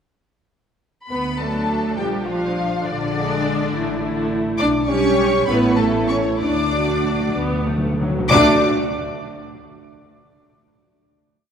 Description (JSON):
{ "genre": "quick classical-period movement for symphony orchestra", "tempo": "62-69 BPM (dotted quarters)", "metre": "6/8", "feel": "straight", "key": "unclear", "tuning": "A4 = 444 Hz", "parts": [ { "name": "rich studio violin section", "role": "melody", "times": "1.1-8.6 s", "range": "D5 to D6", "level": "-25 LUFS", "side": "left 4 dB", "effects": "none" }, { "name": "rich studio violin section", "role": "second line", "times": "1.1-8.7 s", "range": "D4 to D5", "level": "-27 LUFS", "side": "left 2 dB", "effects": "none" }, { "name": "mellow French horn section", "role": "sustained chords", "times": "1.1-8.6 s", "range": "D3 to D4", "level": "-23 LUFS", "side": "left 2 dB", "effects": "none" }, { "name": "rich studio cello section", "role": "bass", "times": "1.1-8.6 s", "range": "D3 to D4", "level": "-26 LUFS", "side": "right 2 dB", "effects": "none" }, { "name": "rich studio double bass section", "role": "bass", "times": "1.1-8.7 s", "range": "A1 to D2", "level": "-26 LUFS", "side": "right 2 dB", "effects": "none" }, { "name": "rich studio viola section", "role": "accompaniment", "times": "1.4-8.7 s", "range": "F3 to G4", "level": "-23 LUFS", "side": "right 2 dB", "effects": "none" }, { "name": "timpani", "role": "percussion", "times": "6.4-8.6 s", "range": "D3", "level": "-27 LUFS", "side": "left 1 dB", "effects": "none" } ], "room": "wet church reverb, RT60 2.5 s", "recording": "none", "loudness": "-17 LUFS", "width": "side -7 dB against mid", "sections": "1.1-8.3 A section; 8.3-10.2 final chord", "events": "slowing down 3.7-8.3; timpani fill 6.4-8.3", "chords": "1.1 D; 2.0 Bb; 2.9 Bb7; 3.7 A5; 4.6 G/B; 5.5 A; 6.4 D" }